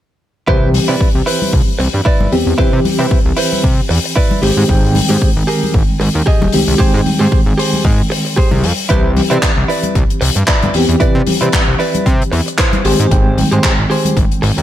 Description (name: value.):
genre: nu-disco, nu disco.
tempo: 114 BPM.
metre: 4/4.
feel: swing 55% on 16ths.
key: C major.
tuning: A4 = 441 Hz.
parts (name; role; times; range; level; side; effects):
reed electric piano; accompaniment; 0.5-14.6 s; Eb3 to G5; -17 LUFS; equal; fast tremolo, sidechain pumping, dub echo.
direct-recorded clean electric guitar; riff; 0.5-14.6 s; E4 to Eb5; -19 LUFS; right 3 dB; lush chorus, dub echo.
fat analog bass; bass; 0.5-14.6 s; Eb1 to C3; -15 LUFS; equal; none.
electronic kick drum; drums; 0.5-14.3 s; none; -14 LUFS; equal; studio reverb.
damped 70s drum kit; drums; 0.7-14.6 s; handclaps, hi-hat; -20 LUFS; left 3 dB; studio reverb.
congas; percussion; 0.7-14.1 s; none; -23 LUFS; left 5 dB; none.
room: small room ambience.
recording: none.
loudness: -11 LUFS.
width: side -12 dB against mid.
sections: 0.5-14.6 A section.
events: none.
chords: 0.5 Cmaj7; 4.4 Abmaj7; 8.9 Cmaj7; 12.8 Abmaj7.